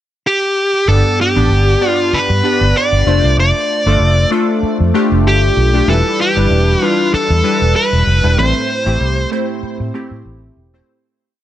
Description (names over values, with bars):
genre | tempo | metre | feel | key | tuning
1980s-style pop | 96 BPM | 4/4 | swing 55% on 16ths | G mixolydian | A4 = 440 Hz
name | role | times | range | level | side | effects
fuzz lead guitar | melody | 0.3-9.3 s | G4 to D5 | -15 LUFS | equal | distortion, digital delay
glassy digital keys | accompaniment | 0.9-10.9 s | G2 to D5 | -17 LUFS | left 1 dB | chorus, phaser
vintage muted fingered electric bass | bass | 0.9-10.8 s | E1 to A2 | -14 LUFS | equal | none
room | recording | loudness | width
light reverb, digital ambience | none | -11 LUFS | side -12 dB against mid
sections
0.0-0.9 pickup bar; 0.9-10.9 verse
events
fade-out 8.4-10.9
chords
0.0 N.C.; 0.9 G; 3.1 F6; 5.9 Em7; 8.4 Am